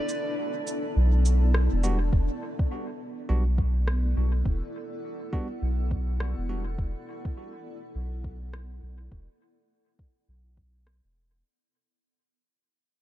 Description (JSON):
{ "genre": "ambient dub", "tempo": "103 BPM", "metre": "4/4", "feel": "swing 60% on 16ths", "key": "unclear", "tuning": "A4 = 441 Hz", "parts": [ { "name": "granular cloud pad", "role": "sustained chords", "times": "0.0-11.4 s", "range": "B3 to F#5", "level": "-36 LUFS", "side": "left 1 dB", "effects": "built-in reverb" }, { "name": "wind-like tuned noise texture", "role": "texture", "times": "0.0-2.1 s", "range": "D4", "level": "-40 LUFS", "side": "equal", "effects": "built-in reverb" }, { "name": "electronic cabasa and rim click", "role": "drums", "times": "0.1-11.0 s", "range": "none", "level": "-37 LUFS", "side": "right 1 dB", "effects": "dub echo" }, { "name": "soft dub sub bass", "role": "bass", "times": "1.0-11.4 s", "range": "E1 to B1", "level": "-24 LUFS", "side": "equal", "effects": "none" }, { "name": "bell-like tine electric piano", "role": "stabs", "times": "1.8-6.6 s", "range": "G3 to F#4", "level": "-39 LUFS", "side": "right 2 dB", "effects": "dub echo" }, { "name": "electronic kick drum", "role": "drums", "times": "2.1-10.7 s", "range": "none", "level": "-28 LUFS", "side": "equal", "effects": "none" } ], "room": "digital ambience", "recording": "dark, warm production", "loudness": "-25 LUFS", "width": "side -14 dB against mid", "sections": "0.0-2.1 A section; 2.1-11.4 B section", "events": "break 0.0-2.1; fade-out 2.1-11.4", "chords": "0.0 E7(no3)", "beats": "0.38 0.96 1.54 | 2.12 2.71 3.29 3.87 | 4.46 5.04 5.62 6.20 | 6.79 7.37 7.95 8.53 | 9.12 9.70 10.28 10.86" }